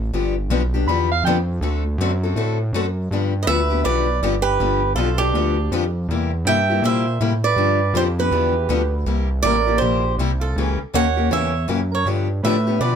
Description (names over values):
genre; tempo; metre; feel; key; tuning
acoustic string swing (jazz manouche); 161 BPM; 4/4; swing 61% on 8ths; G mixolydian; A4 = 440 Hz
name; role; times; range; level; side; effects
fat analog bass; bass; 0.0-13.0 s; G1 to B2; -21 LUFS; right 1 dB; none
picked steel-string acoustic guitar; accompaniment; 0.1-13.0 s; C3 to A4; -23 LUFS; left 8 dB; none
warm soprano saxophone; second line; 0.9-13.0 s; D4 to B5; -25 LUFS; right 4 dB; none
picked swing-style acoustic guitar; melody; 3.4-13.0 s; G4 to G5; -22 LUFS; right 5 dB; none
room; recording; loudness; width
little or no reverb; close, detailed microphones; -17 LUFS; side -7 dB against mid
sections
0.0-3.1 A section; 3.1-13.0 B section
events
soprano saxophone solo 0.0-3.1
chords
0.1 G7; 1.6 D7; 3.1 G7; 6.1 C7; 7.6 G7; 9.1 C7; 10.6 C#dim7; 12.1 G7